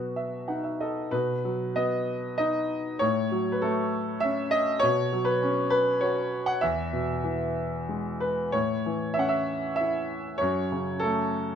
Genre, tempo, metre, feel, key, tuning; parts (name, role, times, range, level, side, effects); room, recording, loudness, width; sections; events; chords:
classical, lyrical solo piano; 97 BPM; 3/4; uneven beats, rubato; A4 = 441 Hz
clear concert grand piano; solo; 0.0-11.6 s; E2 to F#5; -25 LUFS; equal
moderate recital hall reverb, RT60 1.7 s; minimal, uncompressed stereo recording; -25 LUFS; side -8 dB against mid
0.0-1.1 A section; 1.1-11.6 B section
grand piano fill 0.0-1.1
0.0 B; 3.0 F#m/A; 4.8 Bsus2; 6.6 E; 8.5 A; 10.4 F#m